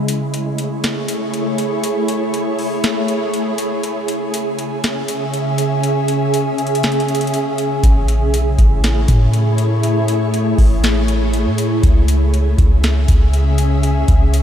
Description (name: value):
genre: hip hop, atmospheric cloud-rap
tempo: 120 BPM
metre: 4/4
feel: half-time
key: unclear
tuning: A4 = 440 Hz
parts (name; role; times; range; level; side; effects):
- ethereal airy pad; sustained chords; 0.0-14.4 s; C#3 to E5; -18 LUFS; equal; ensemble chorus, built-in reverb, sidechain pumping
- booming analog drum machine; drums; 0.1-14.4 s; hi-hat, kick drum, snare drum; -19 LUFS; equal; none
- soft 808-style bass; bass; 7.8-14.4 s; A1 to A2; -15 LUFS; equal; none
room: moderate huge ambient reverb, RT60 7.2 s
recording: dreamy mix soaked in reverb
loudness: -14 LUFS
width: side -10 dB against mid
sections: 0.0-14.4 A section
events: break 0.0-7.8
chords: 0.0 Amaj7; 3.8 C#m; 7.8 Amaj7; 11.8 C#m